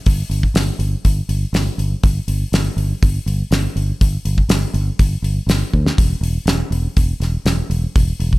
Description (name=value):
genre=folk rock and heartland rock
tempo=122 BPM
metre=4/4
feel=straight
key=unclear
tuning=A4 = 440 Hz
part: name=fingered electric bass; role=bass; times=0.1-8.3 s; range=E1 to D2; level=-18 LUFS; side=equal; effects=none
part: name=damped 70s drum kit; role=drums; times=0.1-8.4 s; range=hi-hat, kick drum, snare drum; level=-18 LUFS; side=equal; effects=none
room=light reverb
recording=none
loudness=-15 LUFS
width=side -21 dB against mid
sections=0.0-8.4 A section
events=drum fill 5.7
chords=none